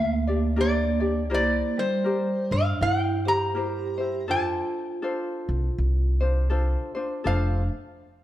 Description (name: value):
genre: Hawaiian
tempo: 81 BPM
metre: 4/4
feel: swing 60% on 8ths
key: F major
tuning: A4 = 440 Hz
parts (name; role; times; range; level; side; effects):
- metal-body resonator slide guitar; melody; 0.0-7.7 s; C5 to Bb5; -27 LUFS; left 1 dB; none
- vibraphone with soft mallets; second line; 0.0-7.7 s; G3 to G4; -29 LUFS; right 4 dB; none
- ukulele; accompaniment; 0.0-7.6 s; D4 to D5; -30 LUFS; left 3 dB; none
- upright bass; bass; 0.0-7.7 s; F1 to G2; -25 LUFS; equal; none
room: light reverb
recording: dark, warm production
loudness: -23 LUFS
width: side -13 dB against mid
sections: 0.0-7.3 A section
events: none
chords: 0.0 Gm; 1.3 C7; 4.3 F6